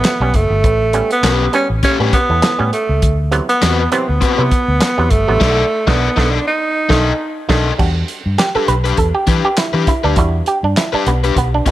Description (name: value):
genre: funk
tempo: 101 BPM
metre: 4/4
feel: swing 56% on 16ths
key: E dorian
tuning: A4 = 440 Hz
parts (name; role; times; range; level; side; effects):
- breathy tenor saxophone; melody; 0.0-7.5 s; A3 to D#4; -16 LUFS; right 2 dB; plate reverb, tape echo
- auto-wah clav; stabs; 0.0-11.7 s; A2 to B4; -19 LUFS; right 4 dB; overdrive, plate reverb
- warm soul drum kit; drums; 0.0-11.7 s; crash cymbal, handclaps, hi-hat, kick drum, snare drum; -17 LUFS; equal; none
- vintage muted fingered electric bass; bass; 0.2-11.6 s; F#1 to E3; -17 LUFS; equal; none
- crunchy overdriven guitar; accompaniment; 1.2-11.7 s; C4 to D#5; -20 LUFS; left 6 dB; spring reverb, plate reverb
room: moderate studio reverb, RT60 0.6 s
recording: none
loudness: -12 LUFS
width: side -14 dB against mid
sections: 0.0-7.8 A section; 7.8-11.7 B section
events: band accent 5.4-7.8; clav solo 7.8-11.7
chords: 0.0 A9; 3.0 D13; 5.4 B7#9; 7.8 Em7